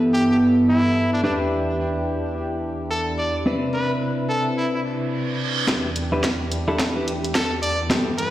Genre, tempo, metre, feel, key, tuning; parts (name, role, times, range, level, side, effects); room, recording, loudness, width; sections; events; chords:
glitch hop; 108 BPM; 4/4; swing 62% on 16ths; E minor; A4 = 440 Hz
warm analog pad; sustained chords; 0.0-8.3 s; E2 to B4; -26 LUFS; right 1 dB; chorus, tremolo, vintage 12-bit sampler grit, sidechain pumping
clean electric guitar; stabs; 0.0-8.1 s; B3 to B4; -22 LUFS; left 1 dB; sidechain pumping, low-pass filter, digital delay
brilliant trumpet; melody; 0.1-8.3 s; D4 to D5; -26 LUFS; equal; digital delay
reverse cymbal and riser; sound effects; 5.0-8.3 s; -31 LUFS; right 5 dB
drum and bass drum kit; drums; 5.7-8.3 s; hi-hat, snare drum; -25 LUFS; equal
electronic kick drum; drums; 5.7-8.0 s; -27 LUFS; equal; high-pass filter on kick
wet lush hall reverb, RT60 2.0 s, digital ambience; played on a big sound system in a bare room, stone room reverb; -19 LUFS; side -14 dB against mid
0.0-5.7 A section; 5.7-8.3 B section
reverse cymbal 5.0-5.7; build-up 5.7-8.3; drum fill 5.7-8.3; filter sweep on clean electric guitar 5.7-8.3
0.0 G69; 1.2 Em7; 3.5 Cmaj9; 5.7 Em7